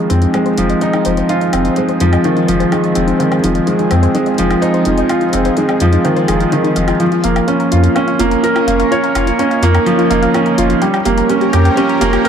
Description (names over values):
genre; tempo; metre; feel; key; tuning
piano and strings electronica; 126 BPM; 4/4; straight; F minor; A4 = 439 Hz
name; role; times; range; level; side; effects
lush unison pad; sustained chords; 0.0-12.3 s; F3 to Bb4; -20 LUFS; equal; chorus
soft round pluck; arpeggios; 0.0-12.3 s; Eb4 to Bb5; -21 LUFS; left 3 dB; chorus, digital delay
felt-muted upright piano; riff; 0.0-12.3 s; Eb3 to Db5; -13 LUFS; right 1 dB; digital delay
warm sub bass; bass; 0.1-12.2 s; F1 to F2; -15 LUFS; left 1 dB; none
electronic hi-hat and woodblock; drums; 0.1-12.3 s; none; -26 LUFS; left 1 dB; high-pass filter on perc, high-pass filter on hats, high-pass filter on room
room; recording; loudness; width
light reverb; dark, warm production; -11 LUFS; side -8 dB against mid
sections
0.0-12.3 A section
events
build-up 0.0-12.3; filter sweep on synth arpeggio sound 0.0-12.3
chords
0.0 Fm7; 7.0 Bbm/F; 10.8 Gdim/F